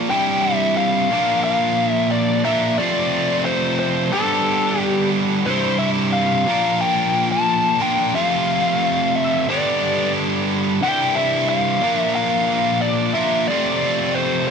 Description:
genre	rock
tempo	90 BPM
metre	4/4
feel	straight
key	C mixolydian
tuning	A4 = 439 Hz
part	distorted electric guitar	riff	0.0-14.5 s	C2 to Bb4	-19 LUFS	right 1 dB	overdrive
part	biting lead guitar	melody	0.1-14.5 s	A4 to A5	-20 LUFS	left 2 dB	wah, overdrive
room	light reverb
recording	none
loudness	-16 LUFS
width	side -6 dB against mid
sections	0.1-14.5 A section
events	none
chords	0.1 C; 1.1 Bb; 2.8 F; 4.1 Gadd9; 5.5 C; 6.5 Bb; 8.1 F; 9.5 G; 10.8 C; 11.8 Bb; 13.5 F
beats	| 0.10 0.77 1.45 2.12 | 2.79 3.46 4.13 4.80 | 5.47 6.14 6.81 7.47 | 8.14 8.81 9.48 10.15 | 10.81 11.48 12.15 12.82 | 13.48 14.15

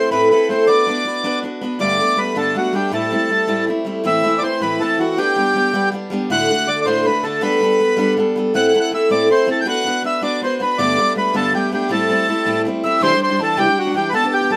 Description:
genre	celtic folk, Celtic jig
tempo	107 BPM (dotted quarters)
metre	6/8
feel	straight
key	A dorian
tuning	A4 = 442 Hz
part	accordion	melody	0.0-14.6 s	F#4 to G5	-20 LUFS	equal	none
part	picked steel-string acoustic guitar	accompaniment	0.0-14.6 s	D2 to B4	-20 LUFS	equal	none
part	mellow tin whistle	second line	12.8-14.6 s	G5 to E6	-23 LUFS	equal	none
room	light reverb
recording	none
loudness	-17 LUFS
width	mono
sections	0.0-4.0 A section; 4.0-13.0 A section; 13.0-14.6 B section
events	none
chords	0.0 Am; 0.7 Bm; 1.8 Gadd9; 2.9 Am7; 4.0 Am; 5.2 G; 6.3 D; 7.4 Gadd9; 8.5 Am; 9.7 Bm; 10.8 Gadd9; 11.9 Am7; 13.0 Cadd9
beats	0.12 | 0.68 1.24 | 1.80 2.36 | 2.92 3.49 | 4.05 4.61 | 5.17 5.73 | 6.29 6.86 | 7.42 7.98 | 8.54 9.10 | 9.66 10.22 | 10.78 11.34 | 11.90 12.45 | 13.01 13.57 | 14.13

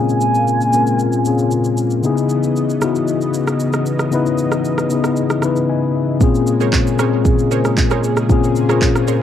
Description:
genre	amapiano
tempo	115 BPM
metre	4/4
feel	straight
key	Bb minor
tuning	A4 = 439 Hz
part	warm velvety synth lead	melody	0.0-1.8 s	Ab5	-20 LUFS	right 2 dB	chorus, low-pass filter, cassette tape, tape echo
part	mellow tine electric piano	accompaniment	0.0-9.2 s	Bb2 to Cb6	-16 LUFS	left 4 dB	medium stereo tremolo, low-pass filter, cassette tape
part	warm analog pad	sustained chords	0.0-9.2 s	Db3 to Eb5	-23 LUFS	right 2 dB	chorus, sidechain pumping, low-pass filter, cassette tape
part	deep house drum kit	drums	0.1-9.2 s	handclaps, kick drum, rim click, shaker	-19 LUFS	right 2 dB	cassette tape
part	analog pluck	stabs	6.6-9.2 s	Ab4 to Db5	-24 LUFS	right 12 dB	chorus, cassette tape, tape echo
room	light reverb, digital ambience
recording	home recording on cassette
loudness	-14 LUFS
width	side -10 dB against mid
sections	0.0-6.2 A section; 6.2-9.2 B section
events	tine electric piano fill 5.2-6.2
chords	0.0 Bbm9; 2.0 Dbm9; 6.2 Bbm9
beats	0.47 0.99 1.51 | 2.03 2.56 3.08 3.60 | 4.12 4.64 5.17 5.69 | 6.21 6.73 7.25 7.77 | 8.29 8.82

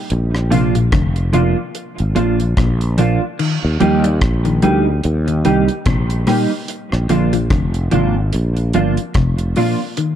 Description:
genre	roots reggae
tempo	73 BPM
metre	4/4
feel	swing 58% on 16ths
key	Eb major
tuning	A4 = 439 Hz
part	sustaining fretless electric bass	bass	0.1-9.5 s	F1 to Eb2	-17 LUFS	equal	none
part	deep reggae drum kit	drums	0.1-10.2 s	crash cymbal, hi-hat, kick drum, rim click	-22 LUFS	equal	none
part	mellow electric guitar	accompaniment	0.5-9.8 s	F3 to G4	-18 LUFS	right 3 dB	analog chorus, tape echo
part	semi-hollow electric guitar	arpeggios	0.5-10.2 s	Bb2 to G3	-21 LUFS	left 5 dB	analog chorus
room	light reverb, studio reverb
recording	dark, warm production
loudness	-14 LUFS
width	side -10 dB against mid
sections	0.0-3.4 A section; 3.4-10.2 B section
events	none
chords	0.1 Bb; 3.4 Eb; 6.7 Bb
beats	| 0.10 0.93 1.75 2.57 | 3.39 4.22 5.04 5.86 | 6.68 7.51 8.33 9.15 | 9.97

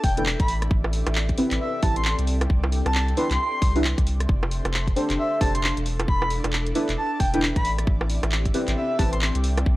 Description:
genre	UK garage, two-step garage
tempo	134 BPM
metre	4/4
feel	swing 61% on 16ths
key	unclear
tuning	A4 = 440 Hz
part	breathy flute-like synth lead	melody	0.0-9.3 s	E5 to C6	-27 LUFS	equal	lush chorus, analog delay
part	airy breathy pad	sustained chords	0.0-9.8 s	C4 to D5	-38 LUFS	equal	chorus, phaser, sidechain pumping
part	saturated sub bass	bass	0.0-9.8 s	E1 to C2	-25 LUFS	equal	none
part	electronic kick drum	drums	0.0-9.8 s	none	-23 LUFS	equal	none
part	garage drum kit	drums	0.0-9.6 s	bongos, handclaps, hi-hat, rim click	-28 LUFS	equal	none
part	ethereal airy pad	texture	0.0-9.8 s	C4 to C6	-35 LUFS	left 1 dB	ensemble chorus, built-in reverb, sidechain pumping
part	deep mellow chord stab	stabs	0.2-9.2 s	C4 to C5	-26 LUFS	equal	chorus, phaser
room	little or no reverb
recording	dry, gritty hardware recording, transformer saturation, vinyl crackle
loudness	-20 LUFS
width	side -18 dB against mid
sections	0.0-9.8 A section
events	none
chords	0.5 Am7; 2.3 Cmaj7; 4.3 F6; 5.9 E7sus4; 7.6 Am7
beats	0.26 | 0.71 1.16 1.60 2.05 | 2.50 2.95 3.39 3.84 | 4.29 4.74 5.18 5.63 | 6.08 6.53 6.98 7.42 | 7.87 8.32 8.77 9.21 | 9.66

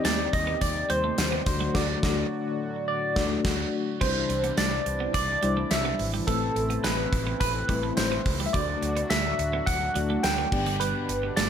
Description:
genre	1980s-style pop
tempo	106 BPM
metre	4/4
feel	straight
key	unclear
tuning	A4 = 441 Hz
part	barky tine electric piano	melody	0.0-11.5 s	A4 to G5	-28 LUFS	right 1 dB	phaser, digital delay
part	FM electric piano with tremolo	accompaniment	0.0-11.5 s	G2 to B5	-31 LUFS	left 5 dB	none
part	brassy analog pad	sustained chords	0.0-11.5 s	A2 to D5	-37 LUFS	right 1 dB	chorus, tremolo
part	twelve-string electric guitar	riff	0.0-11.5 s	F#3 to D4	-35 LUFS	right 9 dB	lush chorus, digital delay
part	fretless electric bass	bass	0.0-11.5 s	G1 to Eb2	-32 LUFS	equal	none
part	gated 80s drum kit	drums	0.0-11.5 s	crash cymbal, hi-hat, kick drum, snare drum, tambourine	-28 LUFS	equal	gated reverb
room	light reverb, small room ambience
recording	none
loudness	-24 LUFS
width	side -8 dB against mid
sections	0.0-4.0 A section; 4.0-11.5 B section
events	band accent 1.7-4.0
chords	0.0 Cmadd9/Eb; 1.5 D; 4.0 Cadd9; 6.3 Amadd9; 8.5 D; 10.5 G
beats	0.05 0.62 1.18 | 1.75 2.31 2.88 3.45 | 4.01 4.58 5.14 5.71 | 6.28 6.84 7.41 7.97 | 8.54 9.11 9.67 10.24 | 10.80 11.37

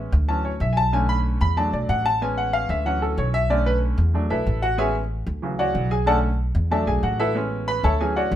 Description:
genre	latin, salsa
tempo	187 BPM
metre	4/4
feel	straight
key	A major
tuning	A4 = 440 Hz
part	bright baby grand piano	accompaniment	0.0-8.4 s	C#3 to B5	-22 LUFS	equal	none
part	upright bass	bass	0.0-8.4 s	A1 to E2	-23 LUFS	equal	none
room	moderate studio reverb, RT60 1.0 s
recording	minimal, uncompressed stereo recording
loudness	-20 LUFS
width	side -11 dB against mid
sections	0.0-8.4 A section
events	grand piano solo 0.0-8.4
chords	0.3 Dmaj7; 0.9 Bm7; 1.6 E7sus4; 2.2 Amaj7; 2.9 Dmaj7; 3.5 Bm7; 4.1 E7sus4; 4.8 Amaj7; 5.4 Dmaj7; 6.1 Bm7; 6.7 E7sus4; 7.4 Amaj7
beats	0.29 0.61 | 0.93 1.25 1.57 1.89 | 2.21 2.54 2.86 3.18 | 3.50 3.82 4.14 4.46 | 4.79 5.11 5.43 5.75 | 6.07 6.39 6.71 7.04 | 7.36 7.68 8.00 8.32

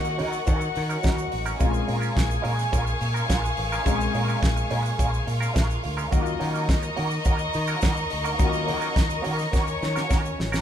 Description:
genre	disco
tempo	106 BPM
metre	4/4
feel	straight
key	unclear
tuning	A4 = 440 Hz
part	clear symphonic string section	second line	0.0-10.6 s	Db4 to Ab5	-30 LUFS	left 1 dB	none
part	clear grand piano	accompaniment	0.0-10.6 s	Gb3 to Ab4	-34 LUFS	left 7 dB	none
part	semi-hollow electric guitar	accompaniment	0.0-10.6 s	Gb3 to Bb4	-32 LUFS	right 4 dB	wah
part	dark studio string section	sustained chords	0.0-10.6 s	Bb4 to Db6	-33 LUFS	left 2 dB	none
part	modern bright fingered electric bass	bass	0.0-10.6 s	A1 to Eb3	-28 LUFS	equal	none
part	tube shaker	percussion	0.0-10.6 s	none	-44 LUFS	right 8 dB	none
part	damped 70s drum kit	drums	0.2-10.6 s	hi-hat, kick drum, snare drum	-26 LUFS	equal	none
room	moderate large studio reverb, RT60 1.1 s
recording	band playing live in one room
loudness	-22 LUFS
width	side -10 dB against mid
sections	0.0-10.6 A section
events	drum fill 9.5-10.6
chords	0.0 Ebm7; 1.6 Bbm7; 6.1 Ebm7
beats	0.48 1.04 | 1.60 2.17 2.73 3.30 | 3.86 4.43 4.99 5.56 | 6.12 6.69 7.26 7.83 | 8.39 8.96 9.53 10.10

